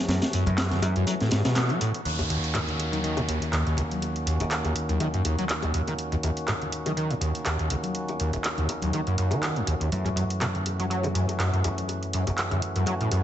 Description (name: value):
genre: breakbeat, breaks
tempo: 122 BPM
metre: 4/4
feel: swing 55% on 16ths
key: Eb minor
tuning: A4 = 441 Hz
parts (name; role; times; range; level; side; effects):
- percussive tonewheel organ; sustained chords; 0.0-13.2 s; Eb3 to Gb4; -33 LUFS; equal; slow rotary speaker, vintage 12-bit sampler grit, low-pass filter
- growling picked electric bass; bass; 0.1-13.2 s; Eb2 to Gb2; -31 LUFS; equal; overdrive, low-pass filter
- crunchy breakbeat drum kit; drums; 0.1-1.9 s; hi-hat, snare drum; -28 LUFS; equal; none
- punchy analog drum machine; drums; 0.1-13.2 s; handclaps, hi-hat; -31 LUFS; right 1 dB; none
- bongos and congas; percussion; 0.2-13.2 s; none; -36 LUFS; left 5 dB; none
- screaming distorted acid line; riff; 0.3-13.2 s; Eb1 to Gb3; -27 LUFS; equal; distortion, wide subtle chorus, tape echo
- downlifter; sound effects; 2.1-6.0 s; none; -36 LUFS; right 1 dB; none
room: light reverb, small room ambience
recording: nothing above 8.0 kHz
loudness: -24 LUFS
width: side -11 dB against mid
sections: 0.0-2.1 A section; 2.1-13.2 B section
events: band accent 1.6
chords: 0.0 Gbm7; 2.1 Ebm7; 9.9 Gbm7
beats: | 0.09 0.58 1.07 1.56 | 2.05 2.54 3.04 3.53 | 4.02 4.51 5.00 5.50 | 5.99 6.48 6.97 7.46 | 7.96 8.45 8.94 9.43 | 9.92 10.41 10.91 11.40 | 11.89 12.38 12.87